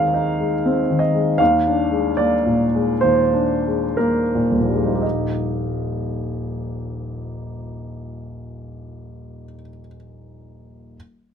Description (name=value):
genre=classical, romantic character piece for solo piano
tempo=54-80 BPM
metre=4/4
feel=rubato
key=Eb major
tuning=A4 = 440 Hz
part: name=warm baby grand piano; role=solo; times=0.0-11.0 s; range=Eb1 to F5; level=-19 LUFS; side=equal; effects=none
room=light reverb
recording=minimal, uncompressed stereo recording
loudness=-17 LUFS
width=side -7 dB against mid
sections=0.0-5.0 A section; 5.0-8.7 B section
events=slowing down 0.0-5.0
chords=0.0 Ab/Eb; 1.4 Bb7/Eb; 5.0 Eb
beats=0.63 | 1.39 2.19 3.04 3.99 | 5.03 5.94 6.85 7.78